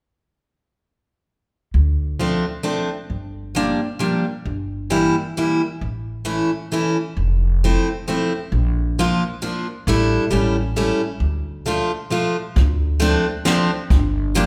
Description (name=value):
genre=musette waltz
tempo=133 BPM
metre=3/4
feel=swing 53% on 8ths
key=D minor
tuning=A4 = 440 Hz
part: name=upright bass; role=bass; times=1.7-14.5 s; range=F1 to D2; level=-23 LUFS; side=equal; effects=none
part: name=picked plugged-in steel-string acoustic guitar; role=accompaniment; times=2.2-14.5 s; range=E3 to F4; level=-22 LUFS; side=equal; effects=none
part: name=jazz brush drum kit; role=drums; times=12.6-14.5 s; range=hi-hat, kick drum, snare drum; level=-21 LUFS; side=equal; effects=none
room=moderate recital hall reverb, RT60 1.4 s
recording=recorded in a church or concert hall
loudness=-20 LUFS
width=mono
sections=1.7-12.6 A section; 12.6-14.5 A section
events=none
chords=1.7 Dm7; 3.1 Gm7; 4.5 Edim/G; 5.8 A; 7.2 Fmaj7; 8.5 Bb; 9.9 A7sus4; 10.3 A7; 11.2 Dm; 12.6 Dm7; 13.9 Gm7